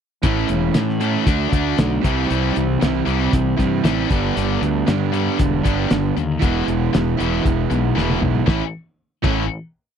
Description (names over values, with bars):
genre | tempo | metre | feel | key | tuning
classic rock | 117 BPM | 4/4 | straight | unclear | A4 = 436 Hz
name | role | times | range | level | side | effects
overdriven electric guitar | riff | 0.2-9.4 s | G2 to F#4 | -22 LUFS | right 14 dB | none
tight distorted guitar | riff | 0.2-9.4 s | E2 to E4 | -23 LUFS | left 13 dB | distortion
fuzz fingered electric bass | bass | 0.2-9.5 s | E1 to A2 | -22 LUFS | left 1 dB | overdrive
cloth-damped thuddy drum kit | drums | 0.2-9.4 s | crash cymbal, hi-hat, kick drum, snare drum, toms | -20 LUFS | left 1 dB | none
room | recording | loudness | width
light reverb | dry, close 1970s-style studio recording | -17 LUFS | side -8 dB against mid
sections
0.2-8.5 verse; 8.5-10.0 final chord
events
drum fill 8.0-8.5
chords
0.2 A; 1.3 D; 2.0 C; 4.1 G; 6.4 E; 8.5 A